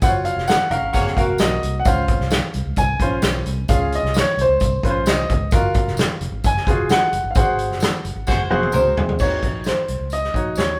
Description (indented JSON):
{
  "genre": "uptempo 1960s-style soul",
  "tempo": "131 BPM",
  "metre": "4/4",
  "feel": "straight",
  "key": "Db major",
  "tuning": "A4 = 440 Hz",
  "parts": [
    { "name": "clear concert grand piano", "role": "melody", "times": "0.0-10.8 s", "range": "C5 to Ab5", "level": "-24 LUFS", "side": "equal", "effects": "none" },
    { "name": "clear upright piano", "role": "accompaniment", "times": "0.0-10.7 s", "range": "Db4 to F5", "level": "-27 LUFS", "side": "equal", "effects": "none" },
    { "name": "vintage muted fingered electric bass", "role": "bass", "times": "0.0-10.8 s", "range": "F1 to Eb2", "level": "-28 LUFS", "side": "equal", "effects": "none" },
    { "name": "natural country drum kit", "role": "drums", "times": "0.0-10.7 s", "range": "crash cymbal, hi-hat, kick drum, snare drum, toms", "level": "-23 LUFS", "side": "equal", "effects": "none" },
    { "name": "tambourine", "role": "percussion", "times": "0.0-10.7 s", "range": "none", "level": "-40 LUFS", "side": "equal", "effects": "none" },
    { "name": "vintage hollow-body jazz guitar", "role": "riff", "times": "0.7-1.8, 8.5-9.4 s", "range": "Bb3 to Bb4", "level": "-30 LUFS", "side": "equal", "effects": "none" },
    { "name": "warm horn section", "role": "second line", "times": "0.9-1.1, 8.3-8.4 s", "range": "Ab3 to Db5", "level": "-27 LUFS", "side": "equal", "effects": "none" }
  ],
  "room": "wet studio reverb, RT60 0.8 s",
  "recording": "band playing live in one room",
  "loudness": "-19 LUFS",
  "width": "mono",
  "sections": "0.0-9.2 A section; 9.2-10.8 B section",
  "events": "band accent 0.0-1.9, 7.4-9.2; drum fill 8.3-9.2",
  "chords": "0.0 Gbmaj7; 1.9 Dbmaj7; 5.5 Gbmaj7; 7.4 Ab7; 9.2 Ebm7"
}